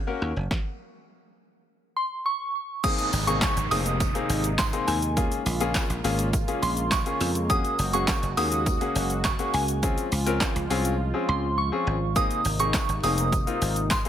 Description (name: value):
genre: dance-pop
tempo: 103 BPM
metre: 4/4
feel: straight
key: unclear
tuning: A4 = 440 Hz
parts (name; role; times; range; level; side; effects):
- clear concert grand piano; accompaniment; 0.1-14.1 s; Bb3 to Bb4; -30 LUFS; left 5 dB; none
- dry thumbed slap bass; bass; 0.2-14.0 s; F1 to F2; -28 LUFS; equal; sidechain pumping
- punchy analog drum machine; drums; 0.5-14.1 s; crash cymbal, handclaps, hi-hat, kick drum, shaker, snare drum; -27 LUFS; equal; overdrive
- soft synth bell; melody; 2.0-14.1 s; Ab5 to Eb6; -28 LUFS; right 2 dB; chorus, ping-pong delay
- warm analog pad; sustained chords; 2.8-14.1 s; C3 to Gb4; -33 LUFS; right 1 dB; chorus, sidechain pumping
- downlifter; sound effects; 2.8-7.5 s; none; -36 LUFS; right 1 dB; none
- tambourine; percussion; 3.1-14.0 s; none; -43 LUFS; right 12 dB; none
room: digital ambience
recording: none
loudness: -23 LUFS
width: side -10 dB against mid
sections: 0.0-2.8 A section; 2.8-14.1 B section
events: stop 0.5-2.8; drums muted 11.0-12.2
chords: 0.0 Gb; 0.5 N.C.; 2.8 Abadd9; 5.2 Bbm7; 7.5 Gbadd9; 9.8 Dbmaj7; 12.2 Abadd9